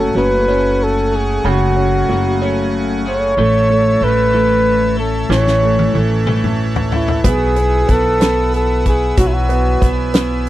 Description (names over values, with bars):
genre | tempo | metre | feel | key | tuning
six-eight pop ballad | 62 BPM (dotted quarters) | 6/8 | straight | unclear | A4 = 443 Hz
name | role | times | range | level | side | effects
warm flugelhorn | melody | 0.0-9.9 s | E4 to C#5 | -16 LUFS | equal | none
bright grand piano | accompaniment | 0.0-10.5 s | C#3 to C#4 | -19 LUFS | right 3 dB | none
pipe organ, strings celeste | sustained chords | 0.0-10.5 s | A3 to F#6 | -26 LUFS | right 2 dB | none
twelve-string electric guitar | arpeggios | 0.0-10.5 s | F#2 to A4 | -24 LUFS | left 9 dB | lush chorus
upright bass | bass | 0.0-10.5 s | F#1 to B1 | -18 LUFS | equal | none
natural country drum kit | drums | 5.3-10.5 s | hi-hat, kick drum, snare drum, toms | -17 LUFS | equal | none
room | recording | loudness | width
little or no reverb | dry, close 1970s-style studio recording | -12 LUFS | side -14 dB against mid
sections
0.0-10.5 A section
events
drum fill 5.3-7.2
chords
0.0 F#madd9; 3.4 A; 7.2 Bsus4